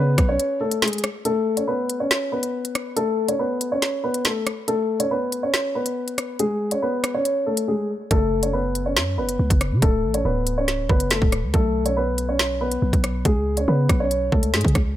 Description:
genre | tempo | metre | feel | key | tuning
hip hop, drill | 140 BPM | 4/4 | half-time | unclear | A4 = 440 Hz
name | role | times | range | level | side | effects
dark concert grand piano | melody | 0.0-14.7 s | G#3 to C#5 | -22 LUFS | left 1 dB | low-pass filter, ping-pong delay
growling 808-style bass | bass | 0.0-0.4, 8.1-15.0 s | C#1 to C#3 | -23 LUFS | equal | none
drill drum kit | drums | 0.2-14.9 s | hi-hat, kick drum, rim click, snare drum | -21 LUFS | equal | none
room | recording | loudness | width
little or no reverb | none | -19 LUFS | side -13 dB against mid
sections
0.0-1.3 A section; 1.3-15.0 B section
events
break 0.4-1.3, 1.3-8.1; filter sweep on grand piano 1.3-15.0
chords
0.0 C#5; 1.3 Aadd9; 6.4 C#5; 8.1 F#m; 9.8 D; 11.5 Aadd9/B; 13.3 C#5

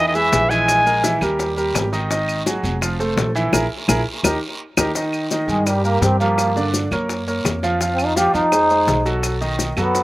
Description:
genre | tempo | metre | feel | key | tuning
Afro-Cuban jazz | 168 BPM | 4/4 | straight | unclear | A4 = 441 Hz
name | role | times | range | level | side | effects
breathy trumpet | melody | 0.0-1.2 s | D#5 to G#5 | -17 LUFS | equal | slapback echo
trombone with straight mute | second line | 0.0-1.2, 5.5-10.0 s | D#3 to G4 | -19 LUFS | equal | slapback echo
clear baby grand piano | accompaniment | 0.0-10.0 s | D3 to F5 | -21 LUFS | right 1 dB | slapback echo
upright bass | bass | 0.0-10.0 s | E#1 to G2 | -23 LUFS | equal | none
maracas | percussion | 0.1-10.0 s | none | -28 LUFS | left 4 dB | none
bongos | percussion | 0.3-10.0 s | none | -25 LUFS | left 4 dB | slapback echo
guiro | percussion | 0.3-10.0 s | none | -34 LUFS | right 3 dB | none
claves | percussion | 0.7-9.9 s | none | -27 LUFS | right 2 dB | none
room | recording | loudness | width
little or no reverb | recorded outdoors, with no room sound | -16 LUFS | side -17 dB against mid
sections
0.0-5.0 A section; 5.0-10.0 B section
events
band accent 3.5-5.0; drum fill 4.1-5.0; trombone solo 5.0-10.0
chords
0.0 E; 0.7 Emaj7#11/A#; 1.4 D#; 2.1 G#5; 2.8 F; 3.5 G#sus2/A#; 4.2 D#; 5.0 Abmaj7sus2 (rootless); 6.4 Gm7; 7.1 F#; 7.8 Fm7; 9.2 B7

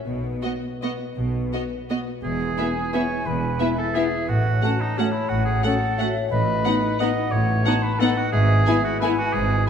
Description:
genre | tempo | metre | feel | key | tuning
classical, orchestral ballroom waltz | 155-191 BPM | 3/4 | rubato | E major | A4 = 440 Hz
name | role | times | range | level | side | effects
concert harp | arpeggios | 0.0-9.7 s | G#2 to F#5 | -28 LUFS | left 5 dB | none
rich studio double bass section | bass | 0.1-9.6 s | E1 to B1 | -29 LUFS | right 3 dB | none
rich symphonic cello section | bass | 0.1-9.6 s | E2 to B2 | -26 LUFS | right 2 dB | none
warm symphonic violin section | melody | 0.4-9.1 s | D#5 to G#5 | -33 LUFS | left 3 dB | none
rich studio violin section | second line | 0.4-9.1 s | C#4 to F#4 | -31 LUFS | left 3 dB | none
warm studio viola section | accompaniment | 0.4-9.1 s | A3 to B3 | -29 LUFS | right 3 dB | none
warm oboe | second line | 2.2-9.7 s | C#4 to D#5 | -26 LUFS | right 2 dB | none
hollow concert flute | second line | 2.6-9.4 s | D#5 to A5 | -29 LUFS | left 2 dB | none
dark French horn section | sustained chords | 2.6-9.1 s | B3 to F#4 | -29 LUFS | left 4 dB | none
room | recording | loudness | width
wet scoring stage reverb, RT60 1.6 s | none | -20 LUFS | side -7 dB against mid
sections
0.0-2.2 A section; 2.2-9.7 B section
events
none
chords
0.1 B; 2.2 E; 4.3 F#m/A; 6.3 B7/A; 8.3 E/G#

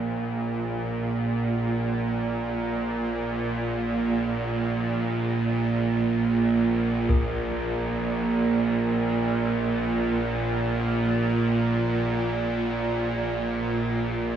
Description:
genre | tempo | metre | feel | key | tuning
dark ambient drone | free time | none | none | unclear | A4 = 440 Hz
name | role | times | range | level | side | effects
bowed-like drone | drone | 0.0-14.4 s | Bb1 to Bb2 | -23 LUFS | right 2 dB | built-in reverb
bronze singing bowl | texture | 0.0-14.4 s | Bb4 | -40 LUFS | left 4 dB | none
taiko ensemble | percussion | 7.1-7.3 s | none | -26 LUFS | left 1 dB | low-pass filter on perc
room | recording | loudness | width
wet echo chamber reverb, RT60 2.1 s | echo-heavy mix, small room ambience | -23 LUFS | side -9 dB against mid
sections
0.0-14.4 A section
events
none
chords
none

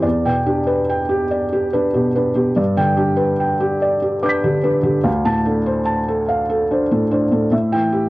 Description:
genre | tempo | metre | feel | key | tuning
neoclassical minimalist piano | 48 BPM (dotted quarters) | 6/8 | rubato | D dorian | A4 = 440 Hz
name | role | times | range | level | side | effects
felt-muted upright piano | solo | 0.0-8.1 s | D2 to B6 | -15 LUFS | equal | cassette tape
room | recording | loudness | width
moderate small room reverb, RT60 0.5 s | home recording on cassette | -15 LUFS | side -19 dB against mid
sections
0.0-8.1 A section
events
none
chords
0.0 Em7; 2.6 G; 5.1 Dm7; 7.5 A7(no3)

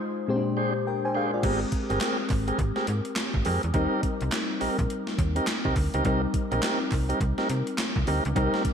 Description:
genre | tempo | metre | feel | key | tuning
R&B, new jack swing | 104 BPM | 4/4 | swing 61% on 16ths | unclear | A4 = 441 Hz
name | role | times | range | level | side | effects
mellow FM electric piano | accompaniment | 0.0-8.7 s | Bb2 to Ab5 | -29 LUFS | left 3 dB | chorus
tonewheel organ | stabs | 0.6-8.6 s | C4 to C5 | -30 LUFS | right 2 dB | overdrive, stopped rotary speaker, tape echo
slap-like FM bass | bass | 1.4-8.5 s | G1 to C3 | -28 LUFS | equal | none
gated 80s digital drum machine | drums | 1.4-8.7 s | crash cymbal, handclaps, hi-hat, kick drum, snare drum | -29 LUFS | equal | gated reverb, gated reverb snare, overdrive
group handclap | percussion | 2.0-7.9 s | none | -42 LUFS | right 8 dB | none
room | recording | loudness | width
light reverb, digital ambience | none | -24 LUFS | side -7 dB against mid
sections
0.0-1.4 A section; 1.4-8.7 B section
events
break 0.0-1.4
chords
0.3 Bb13; 1.4 Abmaj9; 3.7 Eb6

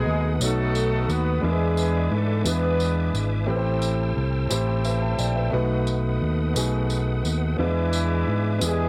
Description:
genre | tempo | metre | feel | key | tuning
slow gospel | 58 BPM (dotted quarters) | 6/8 | straight | unclear | A4 = 445 Hz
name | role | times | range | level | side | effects
mellow horn section | melody | 0.0-3.5, 7.6-8.9 s | E3 to B4 | -30 LUFS | equal | cassette tape
clear baby grand piano | accompaniment | 0.0-8.9 s | A2 to A5 | -30 LUFS | equal | cassette tape
bright tonewheel organ | sustained chords | 0.0-8.9 s | B4 to E6 | -38 LUFS | equal | fast rotary speaker, chorus vibrato, cassette tape
fingered electric bass | bass | 0.1-8.9 s | G#1 to G#2 | -26 LUFS | equal | transformer saturation
tambourine | percussion | 0.4-8.9 s | none | -34 LUFS | equal | none
room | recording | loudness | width
light reverb | home recording on cassette | -24 LUFS | mono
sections
0.0-8.9 A section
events
none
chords
0.0 B7; 1.4 E7; 3.5 Am7; 5.5 B7; 7.6 E7

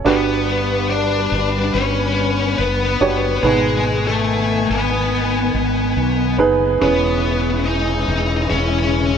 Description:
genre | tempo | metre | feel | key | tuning
pop ballad | 71 BPM | 4/4 | straight | unclear | A4 = 442 Hz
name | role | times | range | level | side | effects
clear concert grand piano | accompaniment | 0.0-9.2 s | G2 to C#5 | -21 LUFS | right 5 dB | none
warm studio string section | sustained chords | 0.0-9.2 s | C#3 to G#5 | -24 LUFS | left 1 dB | none
mellow fretless electric bass | bass | 0.0-9.2 s | E1 to B1 | -22 LUFS | left 1 dB | none
high-gain lead guitar | melody | 0.1-9.2 s | G#3 to D#5 | -20 LUFS | left 3 dB | distortion
room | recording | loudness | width
light reverb | none | -15 LUFS | side -7 dB against mid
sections
0.1-9.2 A section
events
none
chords
0.1 Gmaj7; 3.4 G#m; 6.8 E6

